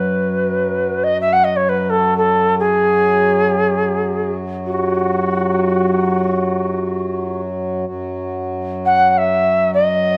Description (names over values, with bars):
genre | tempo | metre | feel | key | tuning
world meditative, free-time meditation music | free time | none | none | F# dorian | A4 = 441 Hz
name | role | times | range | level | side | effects
reedy Native American-style cedar flute | melody | 0.0-10.2 s | F#4 to F#5 | -18 LUFS | equal | none
pedal harmonium | drone | 0.0-10.2 s | F#2 to F#3 | -23 LUFS | equal | none
room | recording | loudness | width
wet small room reverb, RT60 0.5 s | none | -17 LUFS | mono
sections
0.0-7.9 A section; 7.9-10.2 A section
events
none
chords
none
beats
free time